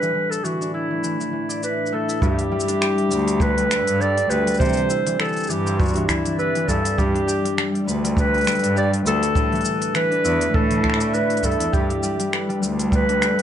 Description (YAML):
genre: folktronica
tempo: 101 BPM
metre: 4/4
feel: swing 56% on 16ths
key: G major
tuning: A4 = 440 Hz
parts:
  - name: dark clarinet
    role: melody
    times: 0.0-13.4 s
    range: E4 to D5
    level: -22 LUFS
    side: equal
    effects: ping-pong delay, plate reverb
  - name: warbly tape-like pad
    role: sustained chords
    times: 0.0-13.4 s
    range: A2 to E5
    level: -29 LUFS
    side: right 2 dB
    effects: chorus, built-in reverb, plate reverb
  - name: concert harp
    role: arpeggios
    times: 0.0-13.4 s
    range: E3 to D5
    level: -25 LUFS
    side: left 3 dB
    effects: plate reverb
  - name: minimal click drum kit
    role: drums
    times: 0.0-13.4 s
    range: finger snaps, hi-hat, shaker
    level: -27 LUFS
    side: equal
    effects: none
  - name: rich cello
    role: bass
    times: 2.2-13.4 s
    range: D2 to C3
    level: -25 LUFS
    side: right 1 dB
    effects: none
  - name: kick drum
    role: drums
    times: 2.2-13.1 s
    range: none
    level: -23 LUFS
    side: right 1 dB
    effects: none
room: moderate studio reverb, RT60 0.6 s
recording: nothing above 10.6 kHz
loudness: -18 LUFS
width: side -9 dB against mid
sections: 0.0-2.2 A section; 2.2-13.4 B section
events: filter sweep on harp 0.0-2.2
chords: 0.0 Dsus2/A; 2.2 G; 4.6 Cadd9; 7.0 G; 9.4 Dsus2; 11.7 G